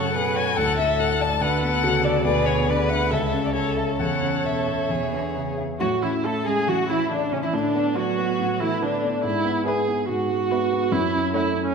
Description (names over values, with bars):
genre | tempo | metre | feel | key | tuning
quick classical-period movement for piano quintet | 141 BPM | 4/4 | rubato | A major | A4 = 440 Hz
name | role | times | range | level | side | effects
rich violin | melody | 0.0-11.7 s | C#4 to A5 | -27 LUFS | left 7 dB | none
rich cello | second line | 0.0-11.7 s | A2 to B3 | -30 LUFS | right 8 dB | none
rich violin | second line | 0.0-11.7 s | C#4 to C#5 | -30 LUFS | left 3 dB | none
rich viola | accompaniment | 0.0-11.7 s | C#4 to C#5 | -25 LUFS | right 4 dB | none
warm concert grand piano | accompaniment | 0.0-11.7 s | C#2 to E5 | -25 LUFS | left 1 dB | none
room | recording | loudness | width
moderate scoring stage reverb, RT60 1.7 s | minimal, uncompressed stereo recording | -20 LUFS | side -5 dB against mid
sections
0.0-5.8 A section; 5.8-11.7 B section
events
none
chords
0.0 F#m; 0.6 D5; 1.4 Bm/D; 2.3 E7/D; 3.1 A/C#; 4.0 A/E; 4.9 E; 5.8 A; 7.5 Bm7/A; 9.2 E/G#; 10.9 F#m7